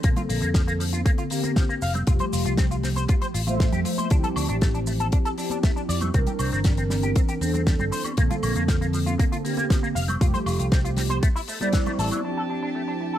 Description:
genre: nu-disco, nu disco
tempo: 118 BPM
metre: 4/4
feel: straight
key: D minor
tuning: A4 = 438 Hz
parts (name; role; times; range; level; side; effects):
- mellow synth brass; accompaniment; 0.0-13.2 s; D3 to E5; -28 LUFS; right 1 dB; chorus, tape echo
- electric guitar with an envelope filter; riff; 0.0-13.2 s; E3 to F5; -31 LUFS; left 2 dB; ensemble chorus, vintage 12-bit sampler grit, low-pass filter, tape echo
- fingered electric bass; bass; 0.0-12.1 s; F1 to F2; -26 LUFS; equal; none
- damped 70s drum kit; drums; 0.0-12.2 s; hi-hat, shaker, snare drum, woodblock; -30 LUFS; left 1 dB; small room ambience
- electronic kick drum; drums; 0.0-11.8 s; none; -22 LUFS; equal; small room ambience
- congas; percussion; 0.2-12.2 s; none; -36 LUFS; right 3 dB; none
- rich chamber violin section; sustained chords; 12.2-13.2 s; G4 to A5; -34 LUFS; right 1 dB; sidechain pumping
room: small room ambience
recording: none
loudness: -21 LUFS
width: side -11 dB against mid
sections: 0.0-12.2 A section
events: filter sweep on analog polysynth 0.0-12.2; band accent 11.7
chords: 0.0 Bbmaj9; 1.8 Fmaj9; 4.1 Dm11; 6.1 C9; 8.2 Bbmaj9; 10.0 Fadd9; 11.2 Am7; 12.2 Dm11

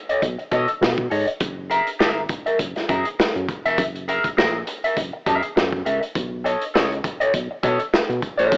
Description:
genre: funk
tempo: 101 BPM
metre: 4/4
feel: swing 56% on 16ths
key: unclear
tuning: A4 = 440 Hz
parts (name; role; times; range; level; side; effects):
- clean electric guitar; accompaniment; 0.1-8.6 s; Ab4 to Fb5; -21 LUFS; equal; wah, wide subtle chorus
- crunchy breakbeat drum kit; drums; 0.1-8.6 s; hi-hat, kick drum, snare drum; -22 LUFS; equal; none
- round analog bass; bass; 0.2-8.6 s; F1 to Cb3; -27 LUFS; equal; none
room: moderate booth ambience, RT60 0.2 s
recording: home recording on cassette, AM radio sound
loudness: -19 LUFS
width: side -29 dB against mid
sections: 0.0-8.6 A section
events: none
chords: 0.0 Cb9; 1.4 Gb9; 6.2 Cb9

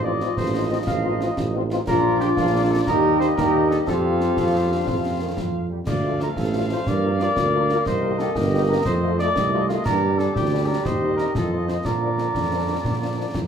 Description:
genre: military-style march for wind band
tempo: 120 BPM (dotted quarters)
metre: 6/8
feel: straight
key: unclear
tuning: A4 = 437 Hz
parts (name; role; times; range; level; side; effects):
- dark cornet; melody; 0.0-13.5 s; F4 to F5; -26 LUFS; right 2 dB; none
- mellow woodwind section; second line; 0.0-13.5 s; F4 to F5; -28 LUFS; left 3 dB; none
- warm French horn section; accompaniment; 0.0-13.2 s; F3 to G4; -26 LUFS; left 3 dB; none
- bright trombone section; sustained chords; 0.0-13.5 s; C3 to Eb4; -30 LUFS; right 2 dB; none
- mellow tuba; bass; 0.0-13.5 s; G1 to Bb2; -24 LUFS; right 3 dB; none
- concert snare drum, concert bass drum and clash cymbals; drums; 0.2-13.5 s; none; -29 LUFS; left 1 dB; none
room: wet large studio reverb, RT60 0.9 s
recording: minimal, uncompressed stereo recording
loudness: -19 LUFS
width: side -7 dB against mid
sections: 0.0-13.5 A section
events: none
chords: 0.0 F7/A; 1.9 Bb; 2.9 Eb; 3.9 F; 5.9 Dm; 6.9 Gm7; 7.9 Cm7; 8.9 F7; 9.9 Gm; 10.9 Cm/Eb; 11.4 F7; 11.8 Bb

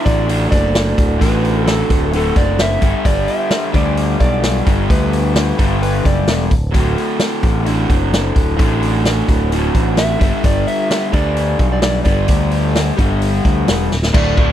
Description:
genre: classic rock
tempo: 130 BPM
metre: 4/4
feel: straight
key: unclear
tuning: A4 = 441 Hz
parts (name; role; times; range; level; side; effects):
- electric slide guitar; melody; 0.0-6.5, 10.0-14.5 s; A4 to E5; -22 LUFS; right 1 dB; none
- raw garage guitar; riff; 0.0-14.5 s; D2 to E4; -18 LUFS; left 1 dB; overdrive
- overdriven picked electric bass; bass; 0.1-14.5 s; D1 to D2; -18 LUFS; equal; none
- vintage drum kit; drums; 0.1-14.5 s; crash cymbal, hi-hat, kick drum, snare drum; -17 LUFS; equal; none
room: little or no reverb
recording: dry, close 1970s-style studio recording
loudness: -13 LUFS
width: side -11 dB against mid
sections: 0.0-14.1 A section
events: drum fill 13.9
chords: 0.0 D; 2.8 G; 6.7 D5; 10.2 G5

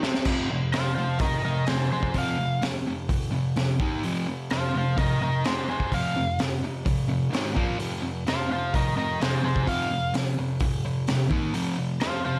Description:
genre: garage rock duo or trio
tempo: 128 BPM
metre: 4/4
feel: straight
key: F minor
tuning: A4 = 442 Hz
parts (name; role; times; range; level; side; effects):
- fuzz guitar; riff; 0.0-12.4 s; F2 to Eb4; -29 LUFS; equal; distortion
- crunchy breakbeat drum kit; drums; 0.0-12.1 s; crash cymbal, hi-hat, kick drum, snare drum; -31 LUFS; equal; none
- overdriven slide guitar; melody; 0.7-12.4 s; Ab4 to F5; -30 LUFS; equal; none
room: light reverb, small room reverb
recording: none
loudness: -26 LUFS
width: mono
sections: 0.3-12.4 A section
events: drum fill 0.0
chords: 0.3 F5; 3.8 Eb5; 4.0 F5; 7.3 Ab5; 7.6 Bb5; 7.8 F5; 11.3 Eb5; 11.5 F5

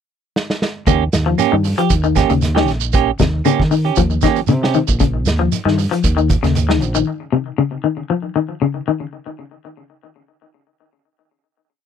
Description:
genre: afrobeat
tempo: 116 BPM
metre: 4/4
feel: straight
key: Eb mixolydian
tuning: A4 = 440 Hz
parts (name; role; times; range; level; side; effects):
- vintage drum kit; drums; 0.4-6.9 s; hi-hat, kick drum, snare drum; -20 LUFS; right 1 dB; none
- twangy electric guitar; arpeggios; 0.9-9.1 s; C3 to F3; -18 LUFS; left 7 dB; harmonic tremolo, tape echo
- clean electric guitar; stabs; 0.9-4.8 s; Bb3 to G4; -17 LUFS; right 15 dB; none
- fingered electric bass; bass; 0.9-7.0 s; Bb1 to Eb3; -18 LUFS; right 1 dB; none
- shekere; percussion; 0.9-7.1 s; none; -24 LUFS; right 9 dB; none
room: little or no reverb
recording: none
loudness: -14 LUFS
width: side -8 dB against mid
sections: 0.0-0.9 pickup bar; 0.9-9.1 groove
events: drum fill 0.3-0.9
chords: 0.0 N.C.; 0.9 Eb7

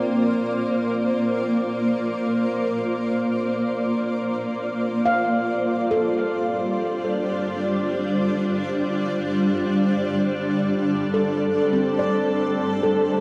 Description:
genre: ambient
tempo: free time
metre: none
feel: none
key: D minor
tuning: A4 = 440 Hz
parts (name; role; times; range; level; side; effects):
- granular cloud pad; sustained chords; 0.0-13.2 s; G3 to D5; -24 LUFS; equal; built-in reverb
- handpan; arpeggios; 0.0-13.2 s; C4 to F5; -28 LUFS; equal; tape echo
room: wet huge ambient reverb, RT60 7.6 s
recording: dark, warm production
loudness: -23 LUFS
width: mono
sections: 0.0-13.2 A section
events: none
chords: 0.0 C9sus4; 5.0 Dm7; 9.5 Am7

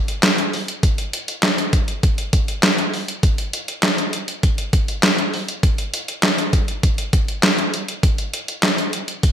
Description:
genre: pop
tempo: 100 BPM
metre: 4/4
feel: straight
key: none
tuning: none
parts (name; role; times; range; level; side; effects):
- detuned 8-bit digital drum machine; drums; 0.1-9.3 s; handclaps, hi-hat, kick drum, snare drum; -17 LUFS; equal; gated reverb
room: light reverb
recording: bright 1980s-style digital production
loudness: -17 LUFS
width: side -9 dB against mid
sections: 0.0-9.3 A section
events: none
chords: none

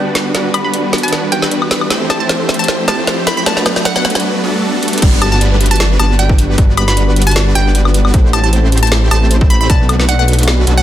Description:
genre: future bass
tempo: 154 BPM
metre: 4/4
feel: swing 54% on 16ths, half-time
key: G major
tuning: A4 = 440 Hz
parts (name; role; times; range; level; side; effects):
- hollow square pluck; melody; 0.0-10.8 s; F#5 to B5; -19 LUFS; equal; chorus, sidechain pumping, dub echo
- shimmering ambient pad; sustained chords; 0.0-10.8 s; G3 to B4; -26 LUFS; left 1 dB; none
- thumb-piano-like synth pluck; arpeggios; 0.0-10.8 s; E4 to F#5; -25 LUFS; right 2 dB; chorus, sidechain pumping, tape echo
- supersaw chords; riff; 0.0-10.8 s; G3 to C5; -18 LUFS; right 1 dB; cassette tape, sidechain pumping
- wide detuned saw bass; bass; 0.0-10.8 s; G1 to B1; -14 LUFS; equal; chorus, sidechain pumping, high-pass filter
- riser and downlifter; sound effects; 0.0-8.1 s; none; -23 LUFS; right 1 dB; none
- trap drum kit; drums; 0.2-10.8 s; crash cymbal, hi-hat, snare drum, woodblock; -17 LUFS; left 1 dB; soft clipping on snare
- electronic kick drum; drums; 5.0-9.8 s; none; -10 LUFS; equal; none
room: light reverb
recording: dense, heavily limited modern master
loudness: -10 LUFS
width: side -12 dB against mid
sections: 0.0-5.0 A section; 5.0-10.8 B section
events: build-up 0.0-5.0; drum fill 0.0-4.2, 4.8; riser 0.0-5.0; drop 5.0-10.8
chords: 0.0 Gmaj7; 1.9 Am7; 3.5 Bm7; 5.0 Gmaj7; 8.1 Am7; 9.7 Bm7

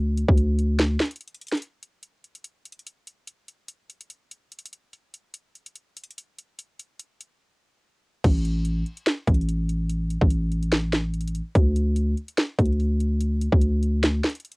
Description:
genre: hip hop, trap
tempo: 145 BPM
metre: 4/4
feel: half-time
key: unclear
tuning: A4 = 440 Hz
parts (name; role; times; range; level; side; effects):
- growling 808-style bass; bass; 0.0-1.0, 8.2-14.2 s; A1 to D2; -22 LUFS; equal; none
- trap drum kit; drums; 0.2-14.6 s; crash cymbal, hi-hat, kick drum, snare drum; -22 LUFS; equal; cassette tape
room: little or no reverb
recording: home recording on cassette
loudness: -21 LUFS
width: side -33 dB against mid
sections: 0.0-1.6 A section; 1.6-8.2 B section; 8.2-14.6 C section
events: none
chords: none

